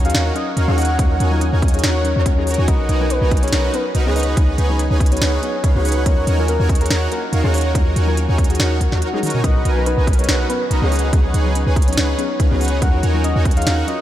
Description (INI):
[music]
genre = future bass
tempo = 142 BPM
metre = 4/4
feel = swing 54% on 16ths, half-time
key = Eb minor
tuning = A4 = 440 Hz
[part]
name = soft round pluck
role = accompaniment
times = 0.0-14.0 s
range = Gb3 to Bb4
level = -27 LUFS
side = left 4 dB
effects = chorus, sidechain pumping, tape echo
[part]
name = soft round pluck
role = arpeggios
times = 0.0-14.0 s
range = Db4 to Gb5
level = -31 LUFS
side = left 3 dB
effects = none
[part]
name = soft supersaw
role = riff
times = 0.0-13.9 s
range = Eb4 to Bb5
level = -23 LUFS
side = right 1 dB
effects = sidechain pumping, tape echo
[part]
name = warm 808-style bass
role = bass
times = 0.0-13.8 s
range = B1 to Eb2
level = -18 LUFS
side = equal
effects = sidechain pumping
[part]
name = trap drum kit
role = drums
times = 0.0-14.0 s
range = hi-hat, snare drum, toms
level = -25 LUFS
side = equal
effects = none
[part]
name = soft octave-layered synth lead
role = melody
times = 0.1-14.0 s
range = Gb4 to Gb5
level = -25 LUFS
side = left 1 dB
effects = chorus, sidechain pumping, analog delay
[part]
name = electronic kick drum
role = drums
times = 1.0-13.5 s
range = none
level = -16 LUFS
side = equal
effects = none
[sound]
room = moderate cathedral reverb, RT60 7.3 s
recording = dreamy mix soaked in reverb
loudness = -15 LUFS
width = side -12 dB against mid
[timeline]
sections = 0.0-14.0 A section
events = break 9.0-9.4; drum fill 9.1-9.4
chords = 0.0 Ebm7; 2.7 Bmaj7; 4.2 Db9sus4; 6.1 Ebm7; 9.4 Bmaj7; 10.9 Db9sus4; 12.8 Ebm7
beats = 0.14 0.57 | 0.99 1.41 1.83 2.26 | 2.68 3.10 3.52 3.95 | 4.37 4.79 5.22 5.64 | 6.06 6.48 6.91 7.33 | 7.75 8.17 8.60 9.02 | 9.44 9.86 10.29 10.71 | 11.13 11.55 11.98 12.40 | 12.82 13.24 13.67